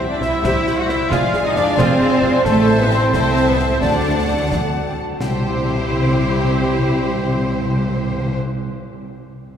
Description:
cinematic, heroic adventure film score; 89 BPM (dotted quarters); 6/8; straight; A4 = 440 Hz
rich symphonic violin section; melody; 0.0-8.3 s; A4 to F#5; -30 LUFS; left 4 dB
clear symphonic violin section; second line; 0.0-8.3 s; G4 to A5; -27 LUFS; left 4 dB
mellow silver concert flute; second line; 0.0-5.2 s; C5 to A5; -24 LUFS; left 2 dB
rich symphonic viola section; accompaniment; 0.0-8.3 s; C4 to D5; -26 LUFS; right 1 dB
warm French horn section; sustained chords; 0.0-8.3 s; G3 to F#4; -27 LUFS; left 3 dB
mellow trumpet section; stabs; 0.0-8.3 s; G4 to F#5; -25 LUFS; right 2 dB
rich studio double bass section; bass; 0.0-8.3 s; F1 to D2; -23 LUFS; right 2 dB
rich symphonic cello section; bass; 0.0-8.3 s; A3 to C5; -22 LUFS; right 2 dB
timpani; percussion; 0.0-0.4, 5.2-8.3 s; C3; -22 LUFS; left 1 dB
concert snare drum and concert bass drum; drums; 0.2-5.3 s; -27 LUFS; equal
wet church reverb, RT60 3.7 s; recorded in a church or concert hall; -15 LUFS; side -8 dB against mid
0.0-5.2 A section; 5.2-7.9 B section
0.0 C; 1.1 Fm; 2.5 Am; 3.8 D; 5.2 C
0.44 | 1.12 1.78 | 2.45 3.13 | 3.82 4.51 | 5.20 5.88 | 6.55 7.23

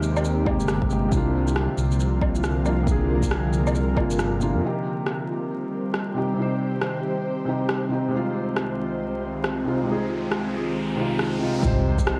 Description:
future garage; 137 BPM; 4/4; swing 62% on 16ths; C minor; A4 = 440 Hz
felt-muted upright piano; accompaniment; 0.0-12.2 s; C3 to C5; -29 LUFS; equal; vintage 12-bit sampler grit, sidechain pumping, tape echo
ethereal airy pad; sustained chords; 0.0-12.2 s; C2 to C5; -30 LUFS; equal; ensemble chorus, built-in reverb, sidechain pumping
swelling detuned saw bass; bass; 0.0-4.6, 11.6-12.2 s; G1 to F2; -26 LUFS; equal; tube saturation, sidechain pumping
electronic shaker, woodblock and rim click; drums; 0.0-12.2 s; -31 LUFS; equal
electronic kick drum; drums; 0.5-4.1, 11.6-12.1 s; -28 LUFS; equal
riser and sub drop; sound effects; 9.1-12.2 s; -36 LUFS; equal
moderate plate reverb, RT60 1.2 s; dreamy mix soaked in reverb, vinyl crackle; -24 LUFS; mono
0.0-4.6 A section; 4.6-11.6 B section
kick drops out 4.2-4.6; riser 9.1-11.6; impact 11.6-12.2
0.0 Abmaj7; 1.1 Bb/C; 4.6 Cm; 8.1 Fm7/C; 11.6 Cm
0.25 0.68 | 1.12 1.56 2.00 2.44 | 2.87 3.31 3.75 4.19 | 4.62 5.06 5.50 5.94 | 6.38 6.82 7.25 7.69 | 8.13 8.57 9.01 9.44 | 9.88 10.32 10.76 11.20 | 11.63 12.07

